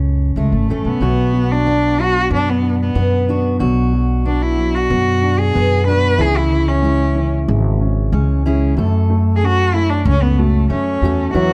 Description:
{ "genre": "folk", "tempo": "93 BPM", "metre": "4/4", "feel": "straight", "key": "B dorian", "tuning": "A4 = 440 Hz", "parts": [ { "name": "fingerpicked steel-string acoustic guitar", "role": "accompaniment", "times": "0.0-11.5 s", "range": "F#2 to A4", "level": "-23 LUFS", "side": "equal", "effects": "none" }, { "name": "upright bass", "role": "bass", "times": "0.0-11.5 s", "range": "G#1 to F#2", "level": "-19 LUFS", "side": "equal", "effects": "none" }, { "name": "warm cello", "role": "melody", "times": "0.4-11.5 s", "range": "G#3 to B4", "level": "-21 LUFS", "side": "equal", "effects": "none" }, { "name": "dark upright piano", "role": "arpeggios", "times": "1.0-11.5 s", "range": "E3 to F#4", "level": "-26 LUFS", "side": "equal", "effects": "none" }, { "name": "warm French horn", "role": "second line", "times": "11.3-11.5 s", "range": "F#3", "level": "-20 LUFS", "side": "equal", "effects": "none" } ], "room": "light reverb", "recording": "close, detailed microphones", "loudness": "-16 LUFS", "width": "mono", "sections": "0.0-11.3 A section", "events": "cello solo 0.0-11.3", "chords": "0.0 F#m; 1.0 Bm; 6.2 C#m; 8.8 F#m" }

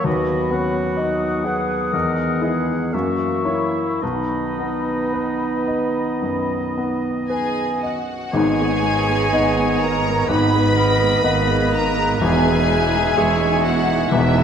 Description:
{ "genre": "classical, romantic movement for piano and orchestra", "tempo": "53-65 BPM", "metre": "4/4", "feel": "rubato", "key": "B major, G# minor from 8.3 s", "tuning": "A4 = 440 Hz", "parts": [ { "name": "clear baby grand piano", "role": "melody", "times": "0.0-14.4 s", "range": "E1 to F#5", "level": "-23 LUFS", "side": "left 1 dB", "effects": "none" }, { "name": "clear clarinet", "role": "second line", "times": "0.0-14.4 s", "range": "D#4 to E5", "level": "-27 LUFS", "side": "equal", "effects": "none" }, { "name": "clear oboe", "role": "second line", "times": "0.0-14.4 s", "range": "A#4 to F#5", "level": "-29 LUFS", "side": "right 1 dB", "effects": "none" }, { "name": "mellow flute section", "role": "second line", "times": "0.0-14.4 s", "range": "E5 to D#6", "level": "-26 LUFS", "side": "left 1 dB", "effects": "none" }, { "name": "mellow bassoon", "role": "accompaniment", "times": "0.1-14.4 s", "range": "G#3 to D#4", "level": "-26 LUFS", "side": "right 3 dB", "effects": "none" }, { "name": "clear French horn section", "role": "sustained chords", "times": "0.1-14.4 s", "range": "D#3 to B3", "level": "-27 LUFS", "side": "left 2 dB", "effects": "none" }, { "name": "bright symphonic violin section", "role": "melody", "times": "7.3-14.4 s", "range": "E5 to B5", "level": "-26 LUFS", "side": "left 3 dB", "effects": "none" }, { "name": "clear symphonic violin section", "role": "second line", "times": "7.3-14.4 s", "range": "E4 to B4", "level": "-27 LUFS", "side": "left 2 dB", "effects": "none" }, { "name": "warm symphonic viola section", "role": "accompaniment", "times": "8.3-14.4 s", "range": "G#3 to G#4", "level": "-26 LUFS", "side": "right 3 dB", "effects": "none" }, { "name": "rich symphonic cello section", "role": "bass", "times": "8.3-14.4 s", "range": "E2 to G#2", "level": "-26 LUFS", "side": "right 3 dB", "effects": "none" }, { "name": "rich symphonic double bass section", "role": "bass", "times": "8.3-14.4 s", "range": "E1 to G#1", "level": "-25 LUFS", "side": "right 3 dB", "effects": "none" } ], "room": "wet concert hall reverb, RT60 2.3 s", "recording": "none", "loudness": "-17 LUFS", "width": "side -8 dB against mid", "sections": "0.0-8.3 A section; 8.3-14.4 B section", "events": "none", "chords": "0.1 B/D#; 1.9 Emaj7; 2.9 F#7; 4.0 B; 8.3 G#m; 12.2 Emaj7" }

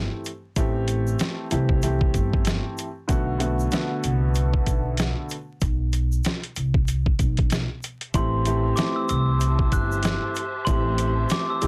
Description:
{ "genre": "hip hop, boom-bap hip-hop", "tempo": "95 BPM", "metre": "4/4", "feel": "swing 60% on 16ths", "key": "A dorian", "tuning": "A4 = 439 Hz", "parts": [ { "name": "dark upright piano", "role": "accompaniment", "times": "0.0-11.7 s", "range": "D3 to G4", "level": "-30 LUFS", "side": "equal", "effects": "high-pass filter, low-pass filter" }, { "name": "upright bass", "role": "bass", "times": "0.0-11.7 s", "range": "G1 to C2", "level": "-27 LUFS", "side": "equal", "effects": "none" }, { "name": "egg shaker", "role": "percussion", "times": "0.2-11.7 s", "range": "none", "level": "-45 LUFS", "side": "equal", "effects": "none" }, { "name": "boom bap sampler-style drum kit", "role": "drums", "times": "0.3-11.7 s", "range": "hi-hat, kick drum, snare drum", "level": "-26 LUFS", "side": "equal", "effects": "vintage 12-bit sampler grit" }, { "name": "warm studio string section", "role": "sustained chords", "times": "8.1-11.7 s", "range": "G4 to A5", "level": "-39 LUFS", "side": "equal", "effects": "high-pass filter, low-pass filter" }, { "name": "glockenspiel with soft plastic mallets", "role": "melody", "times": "8.2-11.7 s", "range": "C6 to F#6", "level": "-30 LUFS", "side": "equal", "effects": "high-pass filter, low-pass filter, tape echo" } ], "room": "little or no reverb", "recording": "dense, heavily limited modern master, vinyl crackle", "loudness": "-24 LUFS", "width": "mono", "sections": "0.0-8.1 A section; 8.1-11.7 B section", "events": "none", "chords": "0.0 Am7; 3.1 Bm7; 8.1 Am7" }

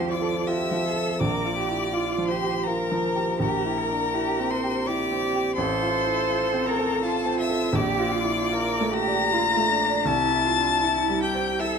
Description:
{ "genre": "classical, slow romantic movement for piano quartet", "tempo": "69-86 BPM", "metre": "3/4", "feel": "rubato", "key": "F major", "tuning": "A4 = 436 Hz", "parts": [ { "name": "rich violin", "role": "melody", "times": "0.0-11.8 s", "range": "A5 to Bb6", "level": "-28 LUFS", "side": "left 8 dB", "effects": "none" }, { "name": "rich violin", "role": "second line", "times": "0.0-11.8 s", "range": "A4 to Bb5", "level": "-28 LUFS", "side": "left 5 dB", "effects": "none" }, { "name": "warm cello", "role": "second line", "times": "0.0-11.8 s", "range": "D4 to Bb4", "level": "-28 LUFS", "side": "right 8 dB", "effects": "none" }, { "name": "warm grand piano", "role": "accompaniment", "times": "0.0-11.8 s", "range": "A1 to D5", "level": "-26 LUFS", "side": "right 1 dB", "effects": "none" } ], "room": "moderate recital hall reverb, RT60 1.7 s", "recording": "close, detailed microphones", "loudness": "-22 LUFS", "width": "side -6 dB against mid", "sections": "0.0-11.8 A section", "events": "none", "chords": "0.0 F; 1.2 Bb6; 3.4 C7/Bb; 5.6 F/A; 7.7 Bbmaj7; 10.1 C" }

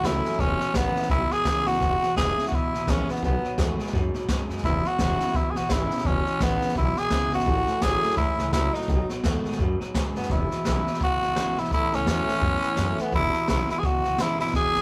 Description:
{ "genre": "rockabilly", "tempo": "170 BPM", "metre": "4/4", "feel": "swing 59% on 8ths", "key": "E major", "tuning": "A4 = 440 Hz", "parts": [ { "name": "growling tenor saxophone", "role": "melody", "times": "0.0-14.8 s", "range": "B3 to G#4", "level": "-27 LUFS", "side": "equal", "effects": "none" }, { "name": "picked steel-string acoustic guitar", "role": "accompaniment", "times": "0.0-14.8 s", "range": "E2 to F#4", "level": "-36 LUFS", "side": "equal", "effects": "none" }, { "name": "electric guitar through a small old amp", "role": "riff", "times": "0.0-14.8 s", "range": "E2 to G#3", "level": "-34 LUFS", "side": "equal", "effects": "none" }, { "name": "upright bass", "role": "bass", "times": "0.0-14.8 s", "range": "E1 to G#2", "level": "-32 LUFS", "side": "equal", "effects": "none" }, { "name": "jazz brush drum kit", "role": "drums", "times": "0.0-14.8 s", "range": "hi-hat, kick drum, snare drum", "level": "-30 LUFS", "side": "equal", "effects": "none" } ], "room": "light reverb", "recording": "rough rehearsal-room recording, tube saturation", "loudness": "-25 LUFS", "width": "mono", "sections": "0.0-10.3 A section; 10.3-14.8 B section", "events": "none", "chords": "0.4 E; 3.2 B7; 4.6 E; 7.5 A; 8.9 B7; 10.3 E; 11.7 A; 13.1 E" }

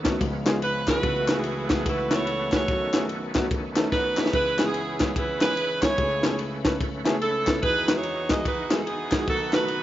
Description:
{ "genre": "uptempo gospel", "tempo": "146 BPM", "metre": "4/4", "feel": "swing 62% on 8ths", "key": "E major", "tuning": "A4 = 440 Hz", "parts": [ { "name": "dark grand piano", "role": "accompaniment", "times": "0.0-9.8 s", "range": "B1 to B4", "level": "-30 LUFS", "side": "left 1 dB", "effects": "slapback echo" }, { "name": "bright tonewheel organ", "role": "sustained chords", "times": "0.0-9.8 s", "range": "C#2 to B4", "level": "-33 LUFS", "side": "right 1 dB", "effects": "slow rotary speaker, overdrive, chorus vibrato" }, { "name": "crisp fusion drum kit", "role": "drums", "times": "0.0-9.8 s", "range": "kick drum, ride cymbal, snare drum", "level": "-26 LUFS", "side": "equal", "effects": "none" }, { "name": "group handclap", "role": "percussion", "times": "0.1-9.6 s", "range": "none", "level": "-34 LUFS", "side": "left 6 dB", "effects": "none" }, { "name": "edgy saxophone section", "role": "melody", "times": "0.6-9.8 s", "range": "B3 to D#5", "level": "-26 LUFS", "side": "right 2 dB", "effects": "none" } ], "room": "little or no reverb", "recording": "nothing above 7.6 kHz", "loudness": "-22 LUFS", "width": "side -13 dB against mid", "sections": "0.0-9.8 A section", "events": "drum fill 3.9-4.3", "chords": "0.2 C#7; 1.0 F#m11/C#; 2.7 B9; 4.3 C#m7; 6.0 Amaj9/C#; 7.6 Emaj9; 9.3 B7" }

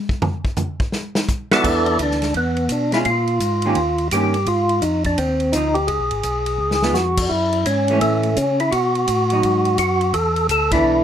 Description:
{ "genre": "soul jazz organ trio", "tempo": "169 BPM", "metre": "4/4", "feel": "swing 64% on 8ths", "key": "E mixolydian", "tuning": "A4 = 439 Hz", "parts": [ { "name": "warm soul drum kit", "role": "drums", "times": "0.1-10.8 s", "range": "crash cymbal, hi-hat, kick drum, ride cymbal, snare drum, toms", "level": "-25 LUFS", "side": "equal", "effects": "none" }, { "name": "percussive tonewheel organ", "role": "melody", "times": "1.5-11.0 s", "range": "A3 to D5", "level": "-18 LUFS", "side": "equal", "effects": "slow rotary speaker, overdrive" }, { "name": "vintage hollow-body jazz guitar", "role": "accompaniment", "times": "1.6-11.0 s", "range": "D#3 to A4", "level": "-22 LUFS", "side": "right 3 dB", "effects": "none" }, { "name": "mellow tonewheel organ", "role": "bass", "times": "1.6-11.0 s", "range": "G#1 to C#3", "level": "-23 LUFS", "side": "equal", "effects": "chorus vibrato, slow rotary speaker" } ], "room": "moderate club reverb, RT60 0.6 s", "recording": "none", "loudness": "-17 LUFS", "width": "side -9 dB against mid", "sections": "0.0-1.6 A section; 1.6-11.0 B section", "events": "drum solo 0.0-1.6; drum fill 6.6-7.0; band accent 10.7", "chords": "0.0 N.C.; 0.9 B5; 1.6 E7sus4; 3.1 A#m7; 3.8 D#7; 4.5 G#6; 5.9 C#7; 7.3 F#m7; 8.7 B7; 10.1 E7sus4" }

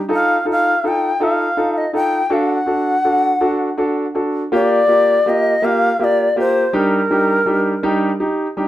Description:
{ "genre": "pop", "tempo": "54 BPM (dotted quarters)", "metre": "6/8", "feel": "straight", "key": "G minor", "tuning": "A4 = 439 Hz", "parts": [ { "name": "bright long shakuhachi", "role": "melody", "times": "0.1-8.2 s", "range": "Bb4 to G5", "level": "-16 LUFS", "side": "left 1 dB", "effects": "slapback echo" }, { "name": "warm concert grand piano", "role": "accompaniment", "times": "0.1-8.7 s", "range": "G3 to A4", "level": "-17 LUFS", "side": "equal", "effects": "none" } ], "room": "moderate studio reverb, RT60 0.6 s", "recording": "rough home demo mix", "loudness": "-14 LUFS", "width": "side -14 dB against mid", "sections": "0.0-4.5 A section; 4.5-8.7 B section", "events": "none", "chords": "0.1 F7; 2.3 D; 4.5 Gm7; 6.7 Ebmaj7/G" }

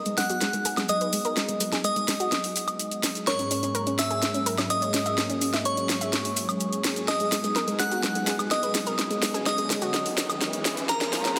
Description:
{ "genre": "progressive house", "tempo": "126 BPM", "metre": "4/4", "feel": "straight", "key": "G# minor", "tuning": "A4 = 439 Hz", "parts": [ { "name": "glassy synth bell", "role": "melody", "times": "0.0-11.4 s", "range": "A#4 to F#6", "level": "-31 LUFS", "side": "equal", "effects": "chorus, tape echo" }, { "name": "lush unison pad", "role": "sustained chords", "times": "0.0-11.4 s", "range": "G#2 to G#4", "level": "-35 LUFS", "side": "equal", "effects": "chorus" }, { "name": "analog pluck", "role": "arpeggios", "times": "0.1-11.4 s", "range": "G#3 to E5", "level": "-34 LUFS", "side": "equal", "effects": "chorus, tape echo" }, { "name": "house drum kit", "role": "drums", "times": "0.1-11.4 s", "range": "hi-hat, snare drum, woodblock", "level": "-31 LUFS", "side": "equal", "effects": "overdrive" }, { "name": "maracas", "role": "percussion", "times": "0.1-11.4 s", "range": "none", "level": "-36 LUFS", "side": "equal", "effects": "none" }, { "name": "riser", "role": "sound effects", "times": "8.0-11.4 s", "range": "none", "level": "-41 LUFS", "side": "equal", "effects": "none" } ], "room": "moderate lush hall reverb, RT60 2.2 s", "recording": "dense, heavily limited modern master, high-pass filter", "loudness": "-26 LUFS", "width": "mono", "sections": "0.0-11.4 A section", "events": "build-up 0.0-11.4; drum fill 0.0-11.4; filter sweep on synth pluck 0.0-11.4; filter sweep on analog synth pad 0.0-11.4; riser 8.0-11.4", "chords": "0.0 G#m7; 3.3 F#add9/G#; 7.1 G#m7; 10.9 F#add9/G#" }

